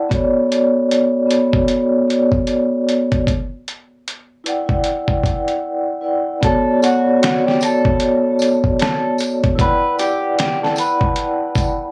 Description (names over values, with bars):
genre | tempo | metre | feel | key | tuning
lo-fi hip hop | 76 BPM | 4/4 | swing 61% on 16ths | B minor | A4 = 439 Hz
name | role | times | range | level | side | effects
vibraphone with soft mallets | accompaniment | 0.0-11.9 s | B3 to A5 | -19 LUFS | equal | cassette tape
dusty soul sampler-style drum kit | drums | 0.1-11.8 s | finger snaps, hi-hat, kick drum, snare drum | -22 LUFS | equal | overdrive
electric guitar at the edge of break-up | melody | 6.4-11.9 s | F#4 to B4 | -24 LUFS | equal | analog delay
tambourine | percussion | 6.8-11.8 s | none | -36 LUFS | equal | none
room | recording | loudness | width
light reverb | dry, gritty hardware recording | -17 LUFS | mono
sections
0.0-6.4 A section; 6.4-11.9 B section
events
silent gap 5.6-6.4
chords
0.1 Bm7; 3.3 Em7; 6.4 Bm7; 9.6 Em7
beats
| 0.11 0.90 1.69 2.48 | 3.27 4.06 4.85 5.64 | 6.43 7.22 8.01 8.80 | 9.59 10.38 11.16